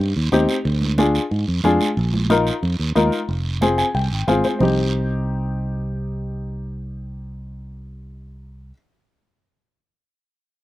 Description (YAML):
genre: latin, cumbia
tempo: 182 BPM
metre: 4/4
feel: straight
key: C minor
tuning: A4 = 440 Hz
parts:
  - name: fingered electric bass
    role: bass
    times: 0.0-8.7 s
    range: F1 to Ab2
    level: -22 LUFS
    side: right 1 dB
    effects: none
  - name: warm upright piano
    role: accompaniment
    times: 0.3-8.7 s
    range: C4 to Ab5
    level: -20 LUFS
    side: left 2 dB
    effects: slapback echo
  - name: congas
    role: percussion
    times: 0.3-4.7 s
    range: none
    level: -24 LUFS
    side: right 3 dB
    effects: none
  - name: guiro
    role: percussion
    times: 0.3-4.7 s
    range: none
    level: -31 LUFS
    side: right 6 dB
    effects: none
room: little or no reverb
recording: recorded outdoors, with no room sound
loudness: -18 LUFS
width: side -16 dB against mid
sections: 0.0-4.6 A section; 4.6-7.3 B section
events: upright piano fill 3.6-4.6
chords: 0.0 Cm; 0.6 Ddim; 2.0 Bbsus4; 3.3 Fmadd9; 4.6 Cm